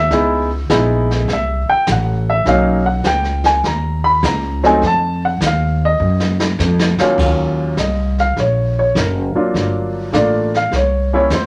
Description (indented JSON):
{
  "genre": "jazz piano trio",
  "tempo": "102 BPM",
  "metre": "4/4",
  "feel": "swing 69% on 8ths",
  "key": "unclear",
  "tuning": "A4 = 441 Hz",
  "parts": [
    { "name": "warm baby grand piano", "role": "melody", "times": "0.0-11.5 s", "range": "Eb2 to B5", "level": "-18 LUFS", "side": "equal", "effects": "none" },
    { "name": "upright bass", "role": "bass", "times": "0.0-11.5 s", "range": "Gb1 to Gb2", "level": "-20 LUFS", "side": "equal", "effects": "none" },
    { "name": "jazz brush drum kit", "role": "drums", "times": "0.1-11.5 s", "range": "brushed snare drum, crash cymbal, hi-hat, kick drum, snare drum", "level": "-25 LUFS", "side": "equal", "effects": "none" }
  ],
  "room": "moderate studio reverb, RT60 0.6 s",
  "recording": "none",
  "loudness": "-16 LUFS",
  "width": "mono",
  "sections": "0.0-7.2 A section; 7.2-11.5 B section",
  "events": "grand piano solo 0.0-7.2; drum fill 6.0-7.2",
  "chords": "0.1 Dbm9; 1.3 Am; 2.5 Bmaj9; 4.8 Ebmadd9; 7.2 Ebm9; 9.5 Gm9; 10.7 C7b9"
}